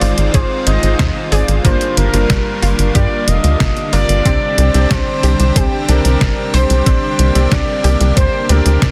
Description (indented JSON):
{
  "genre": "synthwave",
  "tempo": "92 BPM",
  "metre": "4/4",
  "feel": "straight",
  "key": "C minor",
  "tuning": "A4 = 444 Hz",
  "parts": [
    { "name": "expressive synth lead", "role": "melody", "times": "0.0-8.9 s", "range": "G4 to Eb5", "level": "-22 LUFS", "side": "equal", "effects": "chorus, digital delay" },
    { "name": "lush unison pad", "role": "sustained chords", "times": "0.0-8.9 s", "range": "D3 to G4", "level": "-23 LUFS", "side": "equal", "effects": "chorus, sidechain pumping" },
    { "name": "unison pluck", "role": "arpeggios", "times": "0.0-8.9 s", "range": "Bb3 to D5", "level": "-30 LUFS", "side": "equal", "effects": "none" },
    { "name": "bright electric grand piano", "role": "stabs", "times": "0.0-8.9 s", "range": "G2 to D5", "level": "-25 LUFS", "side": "equal", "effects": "tape echo" },
    { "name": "tight sequencer bass", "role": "bass", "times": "0.0-8.9 s", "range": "F1 to G2", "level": "-16 LUFS", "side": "equal", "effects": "sidechain pumping" },
    { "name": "detuned 8-bit digital drum machine", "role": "drums", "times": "0.0-8.9 s", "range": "hi-hat, snare drum", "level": "-22 LUFS", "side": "equal", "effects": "none" },
    { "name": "electronic kick drum", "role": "drums", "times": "0.3-8.9 s", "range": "none", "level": "-19 LUFS", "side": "equal", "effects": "none" }
  ],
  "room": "light reverb, digital ambience",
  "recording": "dense, heavily limited modern master",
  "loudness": "-14 LUFS",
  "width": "mono",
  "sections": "0.0-8.9 A section",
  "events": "none",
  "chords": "0.0 Ab6; 1.6 Gm7; 4.3 Csus2",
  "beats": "0.34 0.99 | 1.65 2.30 2.95 3.60 | 4.25 4.91 5.56 6.21 | 6.86 7.51 8.17 8.82"
}